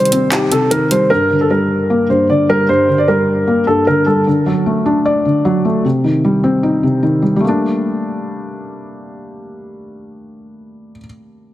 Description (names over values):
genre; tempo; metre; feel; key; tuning
hip hop, trap; 152 BPM; 4/4; half-time; G harmonic minor; A4 = 440 Hz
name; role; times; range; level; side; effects
dark concert grand piano; melody; 0.0-4.2 s; G4 to D5; -14 LUFS; equal; tape echo
felt-muted upright piano; accompaniment; 0.0-11.5 s; G2 to D5; -15 LUFS; left 1 dB; none
trap drum kit; drums; 0.1-1.0 s; handclaps, hi-hat; -19 LUFS; right 1 dB; none
room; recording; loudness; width
light reverb, small room ambience; heavily compressed radio sound; -12 LUFS; side -14 dB against mid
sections
0.0-7.4 A section; 7.4-10.6 B section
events
break 0.0-1.1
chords
0.0 Cm; 1.1 Gm; 4.3 D; 5.8 Cm; 7.4 Gmadd9